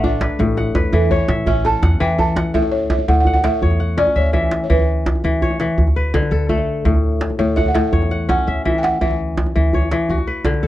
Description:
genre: west african traditional, West African string and xylophone music.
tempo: 111 BPM (dotted quarters).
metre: 12/8.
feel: straight.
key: unclear.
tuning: A4 = 441 Hz.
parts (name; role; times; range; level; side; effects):
balafon; melody; 0.0-9.4 s; A4 to A5; -20 LUFS; right 2 dB; none.
kora; arpeggios; 0.0-10.7 s; A2 to F#5; -20 LUFS; left 3 dB; none.
upright bass; bass; 0.0-10.7 s; A1 to A2; -19 LUFS; equal; none.
djembe; percussion; 0.0-10.6 s; none; -22 LUFS; right 1 dB; none.
room: light reverb.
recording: worn, warbling old tape, cassette tape, warbly pitch drift.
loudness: -15 LUFS.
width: side -14 dB against mid.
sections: 0.0-2.5 A section; 2.5-10.7 B section.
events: balafon solo 0.0-2.5.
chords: 0.4 A; 2.5 A/D; 4.7 E5/D; 5.8 D5; 6.9 A/D; 9.0 Dsus2; 10.1 D.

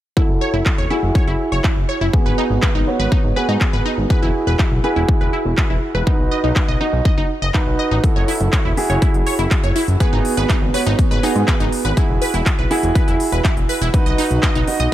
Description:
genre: progressive house.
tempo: 122 BPM.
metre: 4/4.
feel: straight.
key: F# dorian.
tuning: A4 = 440 Hz.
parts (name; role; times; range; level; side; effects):
wide unison pluck; arpeggios; 0.2-14.9 s; D#4 to D#5; -23 LUFS; equal; phaser, vintage 12-bit sampler grit, sidechain pumping, dub echo.
warm concert grand piano; stabs; 0.2-14.9 s; B3 to D#5; -21 LUFS; right 2 dB; sidechain pumping, low-pass filter, dub echo.
electronic kick drum; drums; 0.2-14.5 s; none; -17 LUFS; equal; overdrive.
fat analog bass; bass; 0.3-14.9 s; E1 to G#2; -20 LUFS; equal; sidechain pumping.
big-room dance drum kit; drums; 0.7-14.9 s; handclaps, hi-hat; -26 LUFS; equal; overdrive.
room: digital ambience.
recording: none.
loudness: -15 LUFS.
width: side -13 dB against mid.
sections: 0.2-14.9 A section.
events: filter sweep on grand piano 0.2-14.9.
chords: 0.2 F#m7; 2.1 G#m7; 4.1 Eadd9; 6.1 B; 8.0 F#m7; 10.0 G#m7; 12.0 Eadd9; 13.9 B.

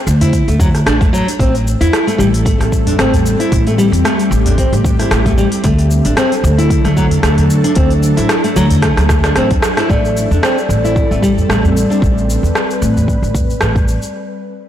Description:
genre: organic downtempo.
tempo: 113 BPM.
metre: 4/4.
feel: swing 55% on 16ths.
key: A dorian.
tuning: A4 = 441 Hz.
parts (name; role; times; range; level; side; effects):
upright bass; bass; 0.1-13.9 s; A1 to E2; -14 LUFS; equal; transformer saturation.
afro-pop drum kit; drums; 0.1-14.1 s; hi-hat, rim click, shaker; -19 LUFS; equal; soft clipping on snare.
nylon-string guitar; arpeggios; 0.2-12.0 s; F#3 to E4; -17 LUFS; left 1 dB; digital delay.
udu; percussion; 0.2-13.8 s; none; -18 LUFS; right 1 dB; none.
electronic kick drum; drums; 0.3-13.8 s; none; -16 LUFS; equal; none.
ethereal airy pad; sustained chords; 1.8-14.1 s; F#3 to B4; -19 LUFS; equal; ensemble chorus, built-in reverb, sidechain pumping.
quartz singing bowl; texture; 9.9-14.2 s; D5; -24 LUFS; left 2 dB; none.
room: light reverb, small room ambience.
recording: blown-out, overdriven recording, overdrive.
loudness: -10 LUFS.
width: side -11 dB against mid.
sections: 0.0-9.9 A section; 9.9-14.1 B section.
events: drum fill 8.8-9.9.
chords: 0.0 D; 1.4 Am7; 5.6 D; 9.9 Am7.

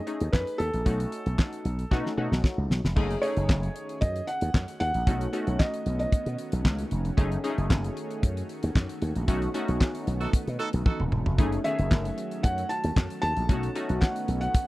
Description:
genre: early-eighties boogie funk.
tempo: 114 BPM.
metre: 4/4.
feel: straight.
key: F# dorian.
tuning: A4 = 440 Hz.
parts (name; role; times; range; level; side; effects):
felt-muted upright piano; melody; 0.0-6.5, 11.6-14.7 s; A4 to A5; -32 LUFS; equal; none.
funky polysynth comp; accompaniment; 0.0-14.6 s; D#3 to G#4; -32 LUFS; left 1 dB; chorus.
damped 70s drum kit; drums; 0.1-14.7 s; crash cymbal, handclaps, hi-hat, kick drum, snare drum, toms; -24 LUFS; equal; none.
slap bass with an envelope filter; bass; 0.2-14.6 s; D#1 to B2; -28 LUFS; equal; none.
lush unison pad; sustained chords; 3.0-14.7 s; D#3 to G#4; -38 LUFS; right 1 dB; chorus.
warm horn section; second line; 10.2-11.0 s; D#4 to A4; -32 LUFS; right 3 dB; none.
room: little or no reverb.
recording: dry, close 1970s-style studio recording.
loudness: -25 LUFS.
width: side -18 dB against mid.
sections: 0.0-3.0 A section; 3.0-14.7 B section.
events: drum fill 1.9-3.0, 10.9-11.4; band accent 9.3-11.4.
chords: 0.0 F#m69 (rootless); 0.9 B9; 3.0 F#m69; 5.1 B9; 7.2 F#m69; 9.3 B9; 11.4 F#m69; 13.5 B9.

